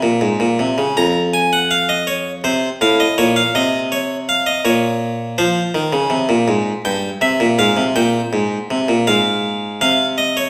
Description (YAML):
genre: classical, baroque-style two-part invention for harpsichord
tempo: 81 BPM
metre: 3/4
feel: straight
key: Bb minor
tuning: A4 = 440 Hz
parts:
  - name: harpsichord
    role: solo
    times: 0.0-10.5 s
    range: F2 to Bb5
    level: -17 LUFS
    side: equal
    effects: none
room: wet recital hall reverb, RT60 1.3 s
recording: recorded in a church or concert hall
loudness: -17 LUFS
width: mono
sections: 1.0-9.8 A section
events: none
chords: 0.0 Bbm; 1.0 Bbm/F; 2.4 F7/C; 3.2 Bbm; 5.4 Fm; 6.9 C7/G; 7.6 Fm/Ab; 9.8 F5/C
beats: 0.22 | 0.97 1.71 2.45 | 3.19 3.92 4.66 | 5.39 6.12 6.86 | 7.60 8.33 9.07 | 9.81